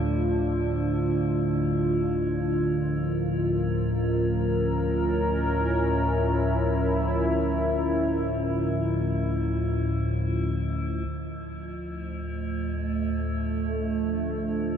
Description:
dark ambient drone; free time; D harmonic minor; A4 = 440 Hz
sweeping resonant pad; sustained chords; 0.0-14.8 s; A3 to Bb4; -27 LUFS; right 1 dB; chorus
analog drone; drone; 0.0-14.8 s; D2 to A2; -27 LUFS; equal; chorus
metallic inharmonic drone; texture; 0.0-14.8 s; F3; -33 LUFS; left 2 dB; chorus, built-in reverb
wet cathedral reverb, RT60 5.3 s; -24 LUFS; side -8 dB against mid
0.0-11.1 A section; 11.1-14.8 B section
filter sweep on synth drone 11.1-14.8
0.0 Dm; 2.7 Bbm; 11.1 Dm
free time

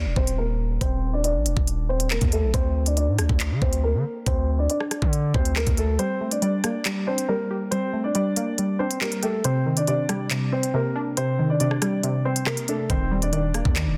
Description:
hip hop, drill; 139 BPM; 4/4; half-time; G minor; A4 = 440 Hz
dark baby grand piano; melody; 0.0-13.9 s; A3 to D5; -29 LUFS; equal; low-pass filter, digital delay
hard-hitting 808-style bass; bass; 0.0-6.0, 12.9-14.0 s; D1 to D3; -26 LUFS; equal
drill drum kit; drums; 0.2-13.9 s; handclaps, hi-hat, kick drum, rim click; -28 LUFS; equal
glassy wavetable pluck; accompaniment; 6.0-14.0 s; C3 to G4; -27 LUFS; equal; chorus, low-pass filter
light reverb; dense, heavily limited modern master; -24 LUFS; mono
0.0-14.0 A section
filter sweep 0.0-6.0; kick muted 6.0-12.9
0.0 Eb5; 2.5 D5; 6.0 Gmadd9; 9.4 Cmadd9; 12.9 Eb
0.38 | 0.81 1.24 1.67 2.11 | 2.54 2.97 3.40 3.83 | 4.26 4.70 5.13 5.56 | 5.99 6.42 6.85 7.29 | 7.72 8.15 8.58 9.01 | 9.44 9.88 10.31 10.74 | 11.17 11.60 12.03 12.47 | 12.90 13.33 13.76

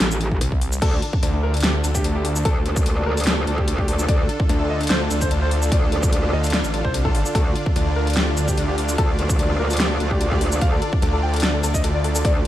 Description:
heavy wobble dubstep; 147 BPM; 4/4; swing 53% on 16ths, half-time; A4 = 440 Hz
metallic wobble bass; bass; 0.0-12.4 s; A1 to D2; -22 LUFS; equal; distortion, chorus, overdrive
dubstep drum kit; drums; 0.0-12.5 s; crash cymbal, hi-hat, shaker, snare drum; -25 LUFS; equal; studio reverb
electronic kick drum; drums; 0.3-12.3 s; -21 LUFS; equal; studio reverb
snarling distorted saw bass; bass; 0.4-12.2 s; A1 to D2; -21 LUFS; equal; distortion, overdrive
clear grand piano; melody; 0.8-12.4 s; D4 to G5; -27 LUFS; left 2 dB; tape echo
supersaw chords; sustained chords; 0.8-12.5 s; D3 to D5; -28 LUFS; equal; vintage 12-bit sampler grit, sidechain pumping
little or no reverb; dark, warm production; -18 LUFS; side -13 dB against mid
0.0-12.5 A section
0.0 Dm
0.00 0.41 | 0.82 1.23 1.64 2.04 | 2.45 2.86 3.27 3.68 | 4.08 4.49 4.90 5.31 | 5.72 6.12 6.53 6.94 | 7.35 7.76 8.17 8.57 | 8.98 9.39 9.80 10.21 | 10.62 11.02 11.43 11.84 | 12.25

